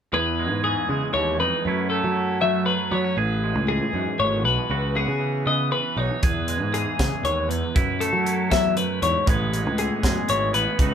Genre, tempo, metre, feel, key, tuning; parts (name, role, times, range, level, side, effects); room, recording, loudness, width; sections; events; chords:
math rock and midwest emo; 79 BPM (dotted quarters); 6/8; straight; E major; A4 = 440 Hz
twangy electric guitar; accompaniment; 0.1-10.9 s; E2 to G#4; -27 LUFS; right 4 dB
twelve-string electric guitar; arpeggios; 0.1-10.9 s; G#4 to E5; -24 LUFS; left 4 dB
fuzz picked electric bass; bass; 0.1-10.9 s; G#1 to F#3; -26 LUFS; equal; overdrive
crisp fusion drum kit; drums; 6.2-10.9 s; hi-hat, kick drum, snare drum; -24 LUFS; equal
moderate studio ambience, RT60 0.5 s; band playing live in one room; -20 LUFS; side -8 dB against mid
0.1-10.9 A section
0.1 Emaj7; 1.7 F#m7; 3.2 Amaj9; 4.7 C#m11; 6.2 Emaj7; 7.8 F#m7; 9.3 Amaj9